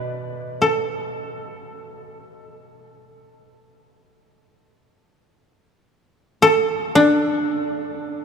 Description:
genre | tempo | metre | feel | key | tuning
japanese traditional, Japanese chamber music | free time | none | none | unclear | A4 = 443 Hz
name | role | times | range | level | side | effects
koto | melody | 0.0-8.2 s | D4 to D5 | -18 LUFS | equal | none
koto | accompaniment | 0.0-2.4 s | B2 | -36 LUFS | right 3 dB | none
room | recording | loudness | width
wet cathedral reverb, RT60 5.6 s | minimal, uncompressed stereo recording | -18 LUFS | side -6 dB against mid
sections
0.0-8.2 A section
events
none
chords
none

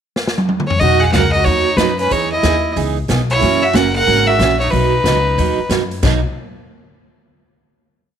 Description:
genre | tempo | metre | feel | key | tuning
country, western swing | 184 BPM | 4/4 | swing 62% on 8ths | B major | A4 = 440 Hz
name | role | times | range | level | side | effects
swinging big-band drum kit | drums | 0.2-6.1 s | crash cymbal, hi-hat, kick drum, snare drum, toms | -20 LUFS | left 1 dB | none
clear fiddle | melody | 0.7-5.7 s | B4 to F#5 | -16 LUFS | left 2 dB | none
rich fiddle | second line | 0.8-5.7 s | C#4 to A#4 | -21 LUFS | right 11 dB | none
picked steel-string acoustic guitar | accompaniment | 0.8-6.2 s | B2 to G#4 | -20 LUFS | right 11 dB | none
upright bass | bass | 0.8-6.2 s | F#1 to F#2 | -18 LUFS | left 2 dB | none
room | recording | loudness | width
light reverb, studio reverb | 1960s-style stereo | -13 LUFS | side -8 dB against mid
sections
0.0-0.8 pickup bar; 0.8-6.0 A section; 6.0-7.3 final chord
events
drum fill 0.2-0.8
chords
0.0 N.C.; 0.8 Bmaj7; 2.1 Emaj7; 3.4 F#7; 4.7 Bmaj7

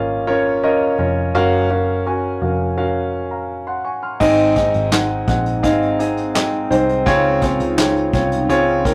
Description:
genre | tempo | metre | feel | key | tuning
piano-driven pop | 84 BPM | 4/4 | straight | unclear | A4 = 439 Hz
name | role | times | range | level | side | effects
warm concert grand piano | accompaniment | 0.0-8.9 s | Ab2 to F6 | -19 LUFS | equal | none
vintage muted picked electric bass | bass | 0.0-8.9 s | F1 to Db2 | -26 LUFS | equal | none
airy breathy pad | sustained chords | 4.2-8.9 s | Ab3 to F4 | -27 LUFS | equal | chorus
vintage brush drum kit | drums | 4.2-8.9 s | crash cymbal, handclaps, hi-hat, kick drum, snare drum | -24 LUFS | equal | none
room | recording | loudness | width
moderate studio ambience, RT60 0.5 s | rough rehearsal-room recording, tube saturation | -18 LUFS | mono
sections
0.0-4.2 A section; 4.2-8.9 B section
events
none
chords
0.0 Bbm; 1.3 Gbmaj7; 4.2 Ab; 7.1 Dbmaj7

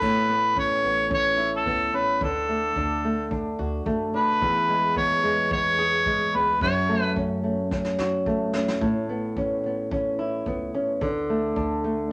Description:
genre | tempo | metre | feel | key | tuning
acoustic pop | 109 BPM | 4/4 | straight | A major | A4 = 443 Hz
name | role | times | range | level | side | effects
mellow harmonica | melody | 0.0-7.1 s | A4 to C#5 | -25 LUFS | equal | none
flamenco guitar | accompaniment | 0.0-12.1 s | E2 to A4 | -28 LUFS | equal | none
upright bass | bass | 0.0-12.1 s | E1 to A2 | -42 LUFS | equal | none
vintage brush drum kit | drums | 0.0-11.7 s | crash cymbal, kick drum, snare drum | -36 LUFS | equal | none
room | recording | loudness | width
moderate studio reverb, RT60 0.6 s | none | -24 LUFS | mono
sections
0.0-12.1 A section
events
drum fill 7.7-8.8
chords
0.0 Aadd9; 2.2 D; 4.4 E; 6.6 F#m; 8.8 Aadd9; 11.0 D5

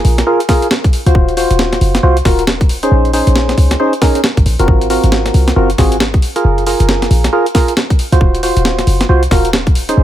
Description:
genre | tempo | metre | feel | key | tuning
UK garage, two-step garage | 136 BPM | 4/4 | swing 61% on 16ths | Eb dorian | A4 = 440 Hz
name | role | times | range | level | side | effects
percussive organ stab | stabs | 0.0-10.0 s | C4 to C5 | -14 LUFS | equal | chorus, tape echo
short 808-style bass | bass | 0.0-10.0 s | Eb1 to Db2 | -13 LUFS | equal | none
breakbeat sampler-style drum kit | drums | 0.0-10.0 s | hi-hat, snare drum | -17 LUFS | equal | overdrive
electronic kick drum | drums | 0.5-9.7 s | none | -12 LUFS | equal | none
room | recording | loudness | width
digital ambience | none | -10 LUFS | side -12 dB against mid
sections
0.0-10.0 A section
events
none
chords
0.0 Gbmaj9; 1.1 Ebm69; 2.9 Bbm11; 4.7 Ab13; 6.2 Gbmaj9; 8.2 Ebm69

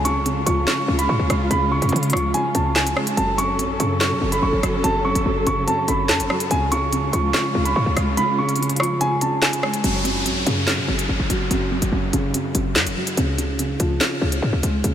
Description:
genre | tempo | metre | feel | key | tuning
hip hop, drill | 144 BPM | 4/4 | half-time | F# harmonic minor | A4 = 443 Hz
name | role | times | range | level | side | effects
dark concert grand piano | melody | 0.0-9.8 s | G#5 to C#6 | -23 LUFS | right 1 dB | tape echo
felt-muted upright piano | accompaniment | 0.0-14.9 s | F#2 to G#3 | -24 LUFS | right 1 dB | none
dark symphonic string section | sustained chords | 0.0-9.8 s | C#3 to A4 | -27 LUFS | equal | none
short 808-style bass | bass | 0.0-14.9 s | F#1 to C#3 | -23 LUFS | left 1 dB | none
drill drum kit | drums | 0.1-14.9 s | handclaps, hi-hat, rim click, snare drum | -25 LUFS | equal | none
downlifter | sound effects | 9.8-13.2 s | none | -29 LUFS | left 1 dB | none
room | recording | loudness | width
moderate huge ambient reverb, RT60 6.3 s | dreamy mix soaked in reverb | -18 LUFS | side -10 dB against mid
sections
0.0-9.8 A section; 9.8-14.9 B section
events
kick muted 8.2-9.8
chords
0.0 C#; 3.2 F#m; 6.5 C#; 9.8 F#5; 13.2 C#

